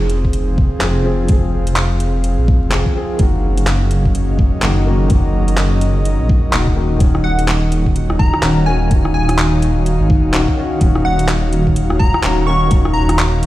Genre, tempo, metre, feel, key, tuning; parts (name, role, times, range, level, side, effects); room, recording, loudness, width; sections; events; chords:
future garage; 126 BPM; 4/4; swing 61% on 16ths; Eb dorian; A4 = 440 Hz
felt-muted upright piano; accompaniment; 0.0-13.5 s; Eb3 to Ab4; -23 LUFS; left 4 dB; vintage 12-bit sampler grit, sidechain pumping, dub echo
airy breathy pad; sustained chords; 0.0-13.5 s; Eb3 to F5; -21 LUFS; right 2 dB; chorus, sidechain pumping
dark detuned saw bass; bass; 0.0-13.5 s; Eb1 to Bb1; -16 LUFS; equal; sidechain pumping
garage drum kit; drums; 0.1-13.5 s; handclaps, hi-hat, rim click; -22 LUFS; equal; studio reverb
electronic kick drum; drums; 0.2-12.8 s; -14 LUFS; equal; studio reverb
plucky unison lead; melody; 7.2-13.2 s; Gb5 to Db6; -22 LUFS; left 1 dB; ping-pong delay
little or no reverb; played on a big sound system in a bare room, stone room reverb, vinyl crackle; -12 LUFS; side -15 dB against mid
0.0-13.5 A section
0.0 Fm; 3.2 Ebm7